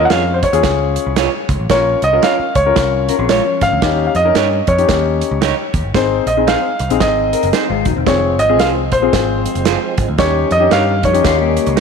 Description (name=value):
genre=uptempo 1960s-style soul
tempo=113 BPM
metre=4/4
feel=swing 62% on 8ths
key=unclear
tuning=A4 = 440 Hz
part: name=clear grand piano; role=melody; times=0.0-11.8 s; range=C5 to Gb5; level=-16 LUFS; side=right 1 dB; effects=none
part: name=clear grand piano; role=accompaniment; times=0.0-11.7 s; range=C4 to Bb4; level=-19 LUFS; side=left 12 dB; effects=none
part: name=picked electric bass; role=bass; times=0.0-11.8 s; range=Eb1 to G2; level=-20 LUFS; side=equal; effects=none
part: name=electric guitar through a small old amp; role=stabs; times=0.1-11.8 s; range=Eb4 to Db5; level=-23 LUFS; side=right 9 dB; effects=warbly pitch drift
part: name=natural country drum kit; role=drums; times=0.1-11.8 s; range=hi-hat, kick drum, snare drum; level=-20 LUFS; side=right 5 dB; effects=none
part: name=mellow electric guitar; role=riff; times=3.1-3.8, 7.3-11.8 s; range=Eb3 to Bb4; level=-20 LUFS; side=left 12 dB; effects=none
part: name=tonewheel organ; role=sustained chords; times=8.1-11.8 s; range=Eb3 to Db4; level=-25 LUFS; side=right 11 dB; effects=slow rotary speaker, overdrive, chorus vibrato
room=moderate echo chamber reverb, RT60 2.1 s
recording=1960s-style stereo with parts hard left and right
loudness=-12 LUFS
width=side -6 dB against mid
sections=0.0-11.8 A section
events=none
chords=0.0 Db; 1.7 Bbm; 3.8 Eb7; 5.9 Ab; 8.1 Fm; 10.2 Eb7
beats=0.10 0.63 1.17 | 1.70 2.23 2.76 3.29 | 3.82 4.35 4.88 5.41 | 5.94 6.47 7.00 7.54 | 8.06 8.60 9.12 9.65 | 10.19 10.71 11.24 11.77